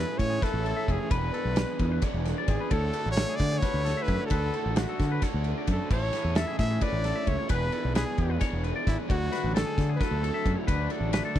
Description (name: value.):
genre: math rock and midwest emo.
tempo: 263 BPM (eighths).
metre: 7/8.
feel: straight.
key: D lydian.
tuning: A4 = 440 Hz.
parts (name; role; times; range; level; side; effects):
clear trumpet; melody; 0.0-11.4 s; D4 to E5; -33 LUFS; equal; none.
twangy electric guitar; accompaniment; 0.0-1.1 s; none; barely audible; none; none.
twangy electric guitar; arpeggios; 0.0-11.4 s; G#4 to E5; -37 LUFS; left 6 dB; wide subtle chorus.
overdriven electric guitar; riff; 0.0-11.4 s; A2 to A4; -34 LUFS; right 1 dB; spring reverb.
growling fingered electric bass; bass; 0.0-11.4 s; E1 to D3; -29 LUFS; equal; overdrive.
loose indie drum kit; drums; 0.2-11.4 s; crash cymbal, kick drum, ride cymbal, snare drum; -30 LUFS; equal; none.
room: little or no reverb.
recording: none.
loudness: -25 LUFS.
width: side -11 dB against mid.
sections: 0.0-11.4 A section.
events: none.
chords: 0.0 Amaj7; 1.1 E7; 2.7 Dmaj7; 5.9 Amaj7; 7.5 E7; 9.1 Dmaj7.